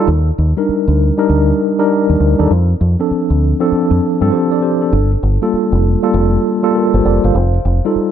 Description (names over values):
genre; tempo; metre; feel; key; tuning
R&B, new jack swing; 99 BPM; 4/4; swing 64% on 16ths; G minor; A4 = 440 Hz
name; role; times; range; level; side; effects
mellow tine electric piano; accompaniment; 0.0-8.1 s; F3 to F5; -14 LUFS; equal; medium stereo tremolo
deep dub fingered electric bass; bass; 0.1-8.0 s; F1 to G2; -13 LUFS; equal; none
room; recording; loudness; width
light reverb; none; -11 LUFS; side -9 dB against mid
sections
0.0-8.1 A section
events
none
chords
0.1 Ebmaj7; 2.5 Dm7; 4.9 Gm9; 7.3 F9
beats
| 0.08 0.68 1.29 1.90 | 2.50 3.11 3.71 4.32 | 4.93 5.53 6.14 6.74 | 7.35 7.96